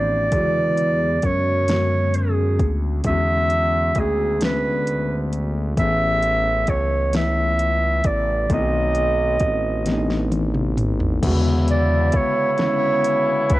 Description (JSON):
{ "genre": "slow six-eight R&B", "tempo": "44 BPM (dotted quarters)", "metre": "6/8", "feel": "straight", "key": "unclear", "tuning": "A4 = 440 Hz", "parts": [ { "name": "warm clarinet", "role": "melody", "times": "0.0-13.6 s", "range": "G#4 to E5", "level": "-21 LUFS", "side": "right 2 dB", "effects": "cassette tape" }, { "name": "mellow tine electric piano", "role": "accompaniment", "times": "0.0-13.6 s", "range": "C#3 to G#4", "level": "-25 LUFS", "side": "left 2 dB", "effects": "medium stereo tremolo, cassette tape" }, { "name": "smooth synth bass", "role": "bass", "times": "0.0-13.6 s", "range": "A1 to F#2", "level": "-22 LUFS", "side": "equal", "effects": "tube saturation" }, { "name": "smooth R&B drum kit", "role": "drums", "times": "0.3-13.6 s", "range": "crash cymbal, hi-hat, kick drum, snare drum, toms", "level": "-24 LUFS", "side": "equal", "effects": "overdrive, cassette tape" }, { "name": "warm horn section", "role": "stabs", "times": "11.2-13.6 s", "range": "C#3 to E4", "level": "-27 LUFS", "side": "left 2 dB", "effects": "cassette tape" } ], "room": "little or no reverb", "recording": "home recording on cassette", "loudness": "-18 LUFS", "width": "side -17 dB against mid", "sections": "0.3-11.2 A section; 11.2-13.6 B section", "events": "drum fill 9.9-11.2", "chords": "0.3 E13; 5.8 Amaj7; 8.5 B7b9; 11.2 E13" }